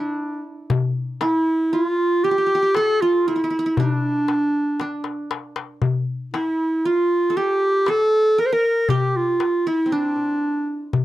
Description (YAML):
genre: Turkish makam ensemble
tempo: 117 BPM (eighths)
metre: 10/8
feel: straight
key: G makam huseyni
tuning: A4 = 440 Hz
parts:
  - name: clear clarinet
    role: melody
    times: 0.0-10.9 s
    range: D4 to C5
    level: -19 LUFS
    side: equal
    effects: slapback echo
  - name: qanun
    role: second line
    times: 0.0-11.0 s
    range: C4 to Bb4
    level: -28 LUFS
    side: right 3 dB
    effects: none
  - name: darbuka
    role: percussion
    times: 0.7-11.0 s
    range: none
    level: -22 LUFS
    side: left 4 dB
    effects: none
room: light reverb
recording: dry, close 1970s-style studio recording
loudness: -18 LUFS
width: side -15 dB against mid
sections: 0.0-11.0 A section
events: drum fill 4.8-5.8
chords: none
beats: 0.20 | 0.71 1.22 1.73 2.24 2.75 3.27 3.78 4.29 4.80 5.31 | 5.82 6.33 6.84 7.36 7.87 8.38 8.89 9.40 9.91 10.43 | 10.94